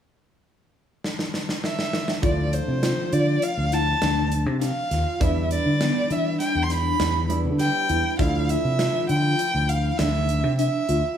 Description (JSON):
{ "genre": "progressive instrumental, band music in an uneven meter", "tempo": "101 BPM", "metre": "5/4", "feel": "straight", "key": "D dorian", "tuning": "A4 = 440 Hz", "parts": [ { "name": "big rock drum kit", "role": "drums", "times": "1.0-11.0 s", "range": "hi-hat, kick drum, snare drum", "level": "-29 LUFS", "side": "equal", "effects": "none" }, { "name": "dark violin", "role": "melody", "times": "1.6-11.2 s", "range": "C5 to C6", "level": "-26 LUFS", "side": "right 1 dB", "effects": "plate reverb, digital delay" }, { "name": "hollow-body jazz guitar", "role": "accompaniment", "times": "2.2-11.2 s", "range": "F3 to F4", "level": "-32 LUFS", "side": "right 4 dB", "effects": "none" }, { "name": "mellow tine electric piano", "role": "arpeggios", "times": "2.2-11.1 s", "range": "B3 to G4", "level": "-28 LUFS", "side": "left 2 dB", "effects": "phaser" }, { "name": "overdriven fingered electric bass", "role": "bass", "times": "2.2-11.0 s", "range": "D2 to E3", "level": "-24 LUFS", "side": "equal", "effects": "none" } ], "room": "moderate studio reverb, RT60 0.8 s", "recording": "small room ambience", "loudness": "-20 LUFS", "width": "side -9 dB against mid", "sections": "0.0-2.2 A section; 2.2-11.2 B section", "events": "drum fill 1.0-2.2", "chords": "0.0 N.C.; 2.2 Dmadd9; 5.2 Em7; 8.2 Dmadd9" }